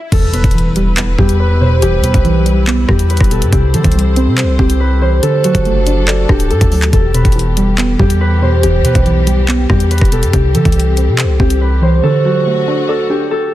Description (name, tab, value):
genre	hip hop, drill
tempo	141 BPM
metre	4/4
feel	half-time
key	E minor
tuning	A4 = 440 Hz
part	swell and impact	sound effects	0.0-1.8 s	none	-22 LUFS	equal	none
part	Celtic harp	melody	0.1-13.5 s	F#4 to C5	-17 LUFS	left 1 dB	low-pass filter, digital delay
part	soft round pluck	accompaniment	0.1-13.5 s	E2 to D5	-16 LUFS	right 2 dB	chorus, low-pass filter
part	warm studio string section	sustained chords	0.1-13.5 s	D3 to C5	-24 LUFS	left 2 dB	none
part	hard-hitting 808-style bass	bass	0.1-12.0 s	D1 to E3	-13 LUFS	equal	none
part	drill drum kit	drums	0.1-11.6 s	crash cymbal, handclaps, hi-hat, kick drum, rim click	-14 LUFS	equal	overdrive
room	little or no reverb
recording	dense, heavily limited modern master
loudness	-10 LUFS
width	side -14 dB against mid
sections	0.1-13.5 A section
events	impact 0.1-1.8; drums muted 12.0-13.5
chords	0.1 Em; 3.5 C; 5.2 D; 6.9 Em; 10.3 C; 12.0 D